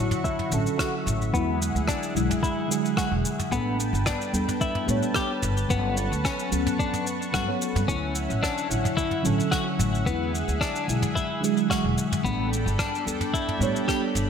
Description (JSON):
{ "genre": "sunset chillout", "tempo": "110 BPM", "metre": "4/4", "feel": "swing 53% on 16ths", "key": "D major", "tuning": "A4 = 438 Hz", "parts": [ { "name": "mellow FM electric piano", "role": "accompaniment", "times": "0.0-14.3 s", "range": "D3 to C#5", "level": "-28 LUFS", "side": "moving between left 5 dB and right 6 dB", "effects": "chorus, phaser, auto-pan, ping-pong delay" }, { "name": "lush unison pad", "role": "sustained chords", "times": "0.0-14.3 s", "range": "C#4 to C#6", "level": "-33 LUFS", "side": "equal", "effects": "chorus" }, { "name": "upright bass", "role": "bass", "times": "0.0-14.3 s", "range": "E1 to A2", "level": "-28 LUFS", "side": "equal", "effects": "none" }, { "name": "soft brush drum kit", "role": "drums", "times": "0.1-14.3 s", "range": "rim click, shaker, toms", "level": "-32 LUFS", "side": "equal", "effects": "gated reverb" }, { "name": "twelve-string electric guitar", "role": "arpeggios", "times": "0.2-14.0 s", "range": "B3 to G4", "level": "-30 LUFS", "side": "left 4 dB", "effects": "low-pass filter, ping-pong delay" }, { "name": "electronic kick drum", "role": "drums", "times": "0.2-14.0 s", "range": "none", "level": "-30 LUFS", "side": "right 1 dB", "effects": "overdrive" } ], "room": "moderate lush hall reverb, RT60 1.8 s, small room ambience", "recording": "bright 1980s-style digital production", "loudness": "-23 LUFS", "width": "side -7 dB against mid", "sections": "0.0-14.3 A section", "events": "filter sweep on clean electric guitar 0.0-14.3", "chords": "0.0 Dmaj9; 1.3 E9; 3.5 A9sus4; 5.7 Gmaj9#11; 7.9 Dmaj9; 10.1 E9; 12.2 A9sus4", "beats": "0.25 0.79 | 1.34 1.88 2.43 2.97 | 3.52 4.07 4.61 5.16 | 5.70 6.25 6.79 7.34 | 7.88 8.43 8.97 9.52 | 10.06 10.61 11.16 11.70 | 12.25 12.79 13.34 13.88" }